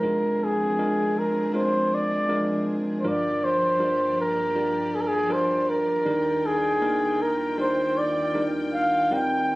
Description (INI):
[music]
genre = acoustic folk-pop ballad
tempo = 79 BPM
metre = 4/4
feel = straight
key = unclear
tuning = A4 = 444 Hz
[part]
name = mellow flugelhorn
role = melody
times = 0.0-9.6 s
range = Ab4 to G5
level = -24 LUFS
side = equal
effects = none
[part]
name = tine electric piano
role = accompaniment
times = 0.0-9.6 s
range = F1 to Bb4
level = -26 LUFS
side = equal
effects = none
[part]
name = warm studio string section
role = sustained chords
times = 0.0-9.6 s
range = Eb2 to G5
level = -36 LUFS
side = left 1 dB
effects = none
[sound]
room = light reverb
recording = recorded on a phone in the room, studio reverb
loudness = -22 LUFS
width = side -20 dB against mid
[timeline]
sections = 0.0-9.6 A section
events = none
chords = 0.0 Bb7/F; 3.0 Gm7; 6.1 Ebmaj7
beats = | 0.03 0.78 1.54 2.29 | 3.04 3.79 4.54 5.30 | 6.06 6.82 7.58 8.34 | 9.11